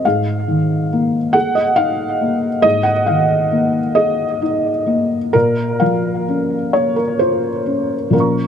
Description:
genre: neoclassical minimalist piano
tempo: 42-46 BPM (dotted quarters)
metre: 6/8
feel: rubato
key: unclear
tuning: A4 = 444 Hz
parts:
  - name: felt-muted upright piano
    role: solo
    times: 0.0-8.5 s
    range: Ab2 to Db6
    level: -14 LUFS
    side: equal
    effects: tape echo
room: little or no reverb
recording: close, detailed microphones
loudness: -14 LUFS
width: side -8 dB against mid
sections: 0.0-8.5 A section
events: none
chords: 0.0 Absus2; 5.3 Bbm

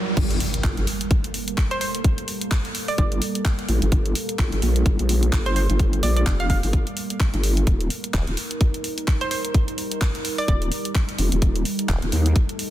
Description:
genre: bass house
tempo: 128 BPM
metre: 4/4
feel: swing 58% on 16ths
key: G minor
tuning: A4 = 444 Hz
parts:
  - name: deep dark ambient pad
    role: sustained chords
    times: 0.0-12.7 s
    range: G3 to Bb4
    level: -30 LUFS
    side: right 2 dB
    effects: chorus, built-in reverb, vintage 12-bit sampler grit, sidechain pumping
  - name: riser and impact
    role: sound effects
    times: 0.0-2.0 s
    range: none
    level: -27 LUFS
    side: right 1 dB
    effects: none
  - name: vowel-sweep wobble bass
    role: bass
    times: 0.2-12.3 s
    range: Eb1 to Eb2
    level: -21 LUFS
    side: equal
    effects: chorus, overdrive, sidechain pumping
  - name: electronic kick drum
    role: drums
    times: 0.2-12.5 s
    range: none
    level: -22 LUFS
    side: equal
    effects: none
  - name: house drum kit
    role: drums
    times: 0.2-12.7 s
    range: crash cymbal, handclaps, hi-hat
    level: -29 LUFS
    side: equal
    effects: none
  - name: hollow square pluck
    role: melody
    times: 1.7-10.6 s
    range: C5 to F5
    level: -29 LUFS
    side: right 2 dB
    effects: chorus, dub echo
  - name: formant-sweep wobble bass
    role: bass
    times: 8.1-8.3, 11.9-12.0 s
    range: Eb1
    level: -24 LUFS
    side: equal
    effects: chorus, sidechain pumping
room: digital ambience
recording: dense, heavily limited modern master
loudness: -20 LUFS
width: side -13 dB against mid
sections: 0.2-12.7 A section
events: riser 0.0; drop 0.2-12.7; impact 0.2-2.0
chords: 0.2 Gmadd9; 7.7 Eb

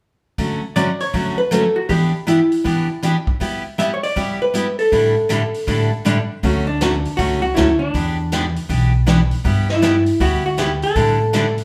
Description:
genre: country, western swing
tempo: 159 BPM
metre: 4/4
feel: swing 64% on 8ths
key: D major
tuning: A4 = 441 Hz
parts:
  - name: picked steel-string acoustic guitar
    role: accompaniment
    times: 0.4-11.5 s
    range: A2 to A4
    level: -22 LUFS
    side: equal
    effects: none
  - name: vintage drum kit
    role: drums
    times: 0.4-11.6 s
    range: hi-hat, kick drum, snare drum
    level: -29 LUFS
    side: equal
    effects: none
  - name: vintage hollow-body jazz guitar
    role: melody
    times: 0.8-11.5 s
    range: D4 to E5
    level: -21 LUFS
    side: equal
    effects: none
  - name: upright bass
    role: bass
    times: 6.4-11.6 s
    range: B1 to A2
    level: -22 LUFS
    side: equal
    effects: none
room: wet large studio reverb, RT60 0.9 s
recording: band playing live in one room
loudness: -18 LUFS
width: mono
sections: 0.4-6.4 A section; 6.4-11.6 B section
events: none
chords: 0.4 Dmaj7; 1.9 Em7; 3.4 G6; 4.9 A7sus4; 6.4 Dmaj7; 7.9 Em7; 9.5 G6; 11.0 A7sus4

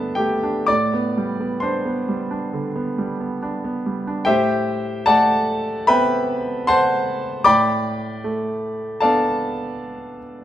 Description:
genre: classical, impressionist solo piano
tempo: 58-78 BPM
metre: 4/4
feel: rubato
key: A dorian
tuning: A4 = 440 Hz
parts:
  - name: bright concert grand piano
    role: solo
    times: 0.0-10.4 s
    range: G2 to D6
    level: -18 LUFS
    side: equal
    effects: none
room: light reverb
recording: close, detailed microphones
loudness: -18 LUFS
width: side -11 dB against mid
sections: 0.0-4.3 A section; 4.3-10.4 A section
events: none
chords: 0.0 Gadd9; 0.7 Am11; 4.3 Am9; 7.5 Dm6/A

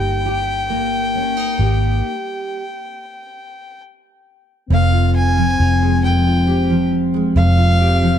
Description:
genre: pop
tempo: 45 BPM (dotted quarters)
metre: 6/8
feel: straight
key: F minor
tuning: A4 = 439 Hz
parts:
  - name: warm violin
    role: melody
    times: 0.0-8.2 s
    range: F5 to Ab5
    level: -22 LUFS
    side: equal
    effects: none
  - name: picked steel-string acoustic guitar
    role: accompaniment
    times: 0.0-8.2 s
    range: F2 to G4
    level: -19 LUFS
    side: equal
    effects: double-tracked left and right
  - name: vintage muted fingered electric bass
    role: bass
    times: 0.0-8.2 s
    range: F1 to Ab1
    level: -17 LUFS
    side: equal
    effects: none
  - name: dark French horn section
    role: second line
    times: 4.7-8.2 s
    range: C4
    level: -21 LUFS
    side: left 3 dB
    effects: none
room: light reverb, small room ambience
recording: dark, warm production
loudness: -14 LUFS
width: side -9 dB against mid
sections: 0.0-4.7 A section; 4.7-8.2 B section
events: stop 2.0-4.7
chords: 0.0 Eb/G; 4.7 Fmadd9

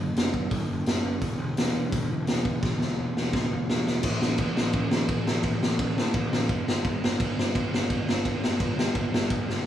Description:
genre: punk rock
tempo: 170 BPM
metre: 4/4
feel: straight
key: unclear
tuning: A4 = 445 Hz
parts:
  - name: fuzz picked electric bass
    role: bass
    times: 0.0-9.6 s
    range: E1 to A2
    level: -30 LUFS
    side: equal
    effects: overdrive
  - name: raw garage drum kit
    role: drums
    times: 0.2-9.6 s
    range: crash cymbal, hi-hat, kick drum, snare drum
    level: -25 LUFS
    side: equal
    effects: none
room: moderate studio reverb, RT60 0.5 s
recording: band playing live in one room, studio ambience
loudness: -24 LUFS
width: side -11 dB against mid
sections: 0.0-4.0 A section; 4.0-9.7 B section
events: half time 0.0-4.0; drum fill 2.6-4.0, 9.5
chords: none

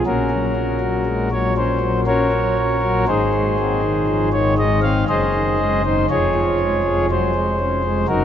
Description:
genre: classical, chorale-style piece for pipe organ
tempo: 60 BPM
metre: 3/4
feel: rubato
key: Db major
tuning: A4 = 440 Hz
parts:
  - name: pipe organ, principal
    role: solo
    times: 0.0-8.2 s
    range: F1 to F5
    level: -16 LUFS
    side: left 1 dB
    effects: none
room: wet cathedral reverb, RT60 6.3 s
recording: nothing above 7.7 kHz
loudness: -16 LUFS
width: side -9 dB against mid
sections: 0.0-8.2 A section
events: none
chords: 0.1 Gb/Bb; 3.1 Ab; 5.1 Ab7/Gb; 6.1 Db/F

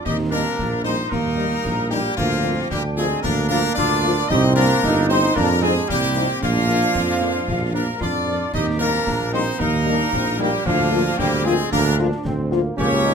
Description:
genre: military-style march for wind band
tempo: 113 BPM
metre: 2/4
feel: straight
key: Eb major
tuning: A4 = 440 Hz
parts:
  - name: clear euphonium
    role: second line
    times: 0.0-13.1 s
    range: F3 to Eb4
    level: -26 LUFS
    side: right 4 dB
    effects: none
  - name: small flute group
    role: second line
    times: 0.0-13.1 s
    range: F5 to Eb6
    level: -26 LUFS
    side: left 2 dB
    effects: none
  - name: warm woodwind section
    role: second line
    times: 0.0-13.1 s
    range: Bb3 to G4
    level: -28 LUFS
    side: left 2 dB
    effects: none
  - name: bright trumpet section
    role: melody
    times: 0.1-13.1 s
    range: F4 to Eb5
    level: -25 LUFS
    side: left 3 dB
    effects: none
  - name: mellow trombone section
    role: sustained chords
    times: 0.1-13.1 s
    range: G3 to Eb4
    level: -28 LUFS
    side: right 1 dB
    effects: none
  - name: mellow tuba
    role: bass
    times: 0.1-13.1 s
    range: G1 to F2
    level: -23 LUFS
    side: right 3 dB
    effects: none
  - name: concert snare drum, clash cymbals and concert bass drum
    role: drums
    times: 0.1-13.1 s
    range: none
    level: -30 LUFS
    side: left 2 dB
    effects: none
  - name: dark French horn section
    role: accompaniment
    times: 0.3-13.1 s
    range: F3 to F4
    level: -26 LUFS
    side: left 5 dB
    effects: none
room: moderate large studio reverb, RT60 1.0 s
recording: close, detailed microphones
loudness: -17 LUFS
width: side -6 dB against mid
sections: 0.1-13.1 A section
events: none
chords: 0.1 Eb; 2.2 Bb/D; 4.3 Cm; 5.4 F5; 6.4 Bb; 8.5 Eb; 10.7 Bb/D

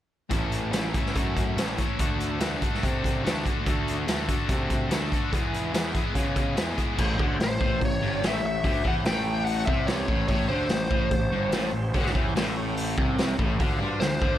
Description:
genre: blues rock power trio and southern rock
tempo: 145 BPM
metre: 4/4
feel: straight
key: A mixolydian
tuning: A4 = 440 Hz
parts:
  - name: distorted electric guitar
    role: riff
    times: 0.3-14.4 s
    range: G2 to A4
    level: -29 LUFS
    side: left 2 dB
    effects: distortion
  - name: fuzz picked electric bass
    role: bass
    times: 0.3-14.4 s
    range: G1 to C#3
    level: -31 LUFS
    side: equal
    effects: overdrive
  - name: raw garage drum kit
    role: drums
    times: 0.3-14.3 s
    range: crash cymbal, hi-hat, kick drum, snare drum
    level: -27 LUFS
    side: equal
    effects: none
  - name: tonewheel organ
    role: sustained chords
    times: 7.0-14.4 s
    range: C#4 to C#5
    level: -37 LUFS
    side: right 2 dB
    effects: slow rotary speaker, chorus vibrato, plate reverb
  - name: biting lead guitar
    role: melody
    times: 7.4-14.4 s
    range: B#4 to G5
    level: -29 LUFS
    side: left 1 dB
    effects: overdrive, plate reverb
room: light reverb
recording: none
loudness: -23 LUFS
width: side -12 dB against mid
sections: 0.3-7.0 A section; 7.0-14.4 B section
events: none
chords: 0.3 A; 2.0 D7; 5.3 E; 7.0 A7#9; 13.6 D7#9

